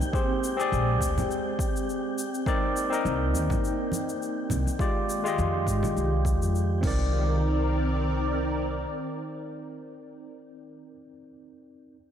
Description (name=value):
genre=sunset chillout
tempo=103 BPM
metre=4/4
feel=swing 56% on 16ths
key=C minor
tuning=A4 = 440 Hz
part: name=overdriven tine electric piano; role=accompaniment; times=0.0-12.0 s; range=Ab3 to Eb5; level=-30 LUFS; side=left 1 dB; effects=auto-pan, analog delay
part: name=soft string machine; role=sustained chords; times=0.0-10.2 s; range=Eb3 to G5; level=-32 LUFS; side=equal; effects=phaser, ensemble chorus
part: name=electronic shaker and crash cymbal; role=drums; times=0.0-7.0 s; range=none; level=-40 LUFS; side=left 4 dB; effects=overdrive
part: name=congas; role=percussion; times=0.0-5.9 s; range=none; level=-35 LUFS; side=right 1 dB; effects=none
part: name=wind-like tuned noise texture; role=texture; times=0.0-7.1 s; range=G4 to G5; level=-41 LUFS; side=equal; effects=built-in reverb
part: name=electronic kick drum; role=drums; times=0.1-7.0 s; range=none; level=-29 LUFS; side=equal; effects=overdrive
part: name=upright bass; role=bass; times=0.7-8.8 s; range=Bb1 to Ab2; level=-27 LUFS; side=equal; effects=none
room=moderate plate reverb, RT60 2.6 s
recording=dreamy mix soaked in reverb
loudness=-24 LUFS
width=side -9 dB against mid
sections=0.0-7.1 A section; 7.1-9.5 B section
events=filter sweep on string machine 0.0-7.1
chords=0.1 Bb13; 2.5 Cm9; 4.8 Fm9; 6.8 Cm9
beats=| 0.13 0.72 1.30 1.88 | 2.46 3.05 3.63 4.21 | 4.79 5.38 5.96 6.54 | 7.12 7.71 8.29 8.87